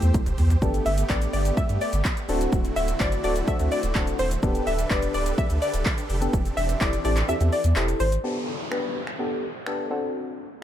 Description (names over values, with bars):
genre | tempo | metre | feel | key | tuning
dance-pop | 126 BPM | 4/4 | straight | G major | A4 = 440 Hz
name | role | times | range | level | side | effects
deep mellow chord stab | accompaniment | 0.0-10.5 s | A3 to C5 | -29 LUFS | left 2 dB | chorus, sidechain pumping
supersaw chords | sustained chords | 0.0-8.2 s | D3 to E6 | -33 LUFS | right 2 dB | sidechain pumping
warm sub bass | bass | 0.0-8.2 s | D1 to G2 | -24 LUFS | equal | sidechain pumping
pop drum kit | drums | 0.0-9.8 s | finger snaps, handclaps, hi-hat, kick drum, shaker, toms | -27 LUFS | equal | overdrive
glassy wavetable pluck | melody | 0.9-8.1 s | C5 to E5 | -28 LUFS | left 1 dB | chorus, sidechain pumping, tape echo
downlifter | sound effects | 8.2-10.6 s | none | -35 LUFS | left 1 dB | none
room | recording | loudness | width
little or no reverb | none | -22 LUFS | side -11 dB against mid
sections
0.6-8.2 A section; 8.2-10.6 B section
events
drum fill 0.0-0.6; kick muted 7.3-8.2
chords
0.0 C6/E; 0.6 Gadd9; 2.3 D7; 4.4 Gadd9/D; 6.3 C6/E; 8.2 Gadd9; 9.9 D7